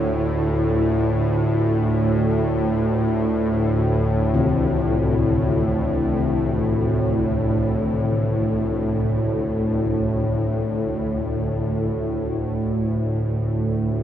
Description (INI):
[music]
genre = dark ambient drone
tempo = free time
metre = none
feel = none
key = unclear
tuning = A4 = 440 Hz
[part]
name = old church bells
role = arpeggios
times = 0.0-11.7 s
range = C3 to D4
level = -28 LUFS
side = left 3 dB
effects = diffuse ambient delay
[part]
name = bowed-like drone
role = drone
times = 0.0-14.0 s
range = D2 to A2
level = -19 LUFS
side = equal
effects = built-in reverb
[part]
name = bronze singing bowl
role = texture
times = 0.0-14.0 s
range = none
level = barely audible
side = none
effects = none
[sound]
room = moderate plate reverb, RT60 2.7 s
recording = dreamy mix soaked in reverb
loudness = -19 LUFS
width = side -10 dB against mid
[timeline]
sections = 0.0-14.0 A section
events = none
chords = 0.0 Dm7